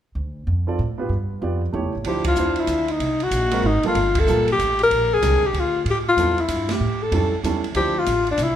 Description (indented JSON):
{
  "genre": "jazz, small-group swing and bop",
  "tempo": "190 BPM",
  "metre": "3/4",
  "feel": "swing 64% on 8ths",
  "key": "D minor",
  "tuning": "A4 = 441 Hz",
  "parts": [
    { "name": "upright bass", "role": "bass", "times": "0.2-8.6 s", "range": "G1 to A2", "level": "-24 LUFS", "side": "right 1 dB", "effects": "none" },
    { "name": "warm concert grand piano", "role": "accompaniment", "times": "0.7-7.9 s", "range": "F3 to D5", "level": "-26 LUFS", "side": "right 4 dB", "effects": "none" },
    { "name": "open jazz drum kit", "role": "drums", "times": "2.0-8.5 s", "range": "hi-hat, kick drum, ride cymbal, snare drum", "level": "-29 LUFS", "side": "right 2 dB", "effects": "none" },
    { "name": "warm alto saxophone", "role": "melody", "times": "2.1-8.6 s", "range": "D4 to Bb4", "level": "-20 LUFS", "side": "left 2 dB", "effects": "none" }
  ],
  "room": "moderate recital hall reverb, RT60 1.7 s",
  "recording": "recorded in a church or concert hall",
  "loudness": "-18 LUFS",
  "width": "side -10 dB against mid",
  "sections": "0.2-2.1 A section; 2.1-8.6 B section",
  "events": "band accent 2.2, 4.1, 6.6",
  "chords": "0.2 Dm; 1.1 G7; 1.7 A7; 2.1 Dm9; 3.0 G#9; 4.0 Gm9; 4.9 Bb13; 5.9 Am7; 6.8 A7; 7.8 Dm9",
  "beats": "| 0.15 0.47 0.79 | 1.10 1.42 1.74 | 2.05 2.37 2.69 | 3.00 3.32 3.64 | 3.95 4.27 4.59 | 4.90 5.22 5.54 | 5.85 6.17 6.49 | 6.80 7.12 7.44 | 7.75 8.07 8.39"
}